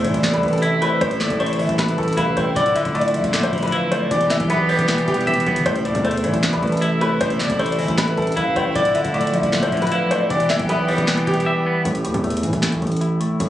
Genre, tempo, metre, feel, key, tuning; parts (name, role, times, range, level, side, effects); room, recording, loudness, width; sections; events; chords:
hip hop, trap; 155 BPM; 4/4; half-time; A minor; A4 = 440 Hz
clear grand piano; melody; 0.0-11.8 s; G4 to E5; -22 LUFS; left 1 dB; tape echo
gliding portamento lead; second line; 0.0-11.8 s; B4 to G5; -27 LUFS; equal; chorus, tape echo
semi-hollow electric guitar; accompaniment; 0.0-13.5 s; A2 to E5; -22 LUFS; equal; low-pass filter
bright chamber string section; sustained chords; 0.0-11.8 s; C3 to G4; -26 LUFS; equal
hard-hitting 808-style bass; bass; 0.0-13.5 s; D1 to A2; -26 LUFS; right 1 dB
booming analog drum machine; drums; 0.0-13.5 s; handclaps, hi-hat, kick drum, snare drum; -27 LUFS; equal; vintage 12-bit sampler grit
impact; sound effects; 0.0-1.0 s; barely audible
digital ambience; recorded on a phone in the room, club reverb, faint mains hum; -17 LUFS; side -12 dB against mid
0.0-11.9 A section; 11.9-13.5 B section
impact 0.0-1.0; silent gap 11.5-11.9; filter sweep on clean electric guitar 11.9-13.5
0.0 Am; 2.6 Dmadd9; 4.1 Em; 5.7 Am; 8.8 Dmadd9; 10.3 Em; 11.9 A5